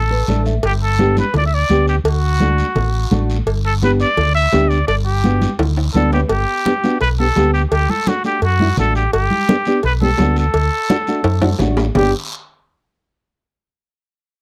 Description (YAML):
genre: latin, cumbia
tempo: 170 BPM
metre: 4/4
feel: straight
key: G major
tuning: A4 = 441 Hz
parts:
  - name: trumpet with straight mute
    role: melody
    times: 0.0-12.1 s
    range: F#4 to E5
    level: -22 LUFS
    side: equal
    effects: none
  - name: fingered electric bass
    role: bass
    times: 0.0-12.1 s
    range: G1 to F#2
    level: -20 LUFS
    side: equal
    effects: none
  - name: nylon-string guitar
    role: accompaniment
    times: 0.1-12.1 s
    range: A3 to E5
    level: -21 LUFS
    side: equal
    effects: none
  - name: congas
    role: percussion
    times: 0.3-12.0 s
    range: none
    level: -25 LUFS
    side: equal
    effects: none
  - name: guiro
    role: percussion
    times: 0.3-12.0 s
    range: none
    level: -35 LUFS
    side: equal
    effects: none
  - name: cowbell and timbales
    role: percussion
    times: 0.6-12.0 s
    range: none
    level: -24 LUFS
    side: equal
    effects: none
room: little or no reverb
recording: dry, close 1970s-style studio recording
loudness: -16 LUFS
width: mono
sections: 0.0-6.3 A section; 6.3-12.0 B section; 12.0-13.4 C section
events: nylon-string guitar fill 0.0-0.6, 5.8-6.3; drum fill 5.6-6.3, 11.2-12.0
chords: 0.0 D5; 0.6 G; 2.1 D; 3.5 G; 7.7 D; 9.1 G; 10.5 D; 12.0 G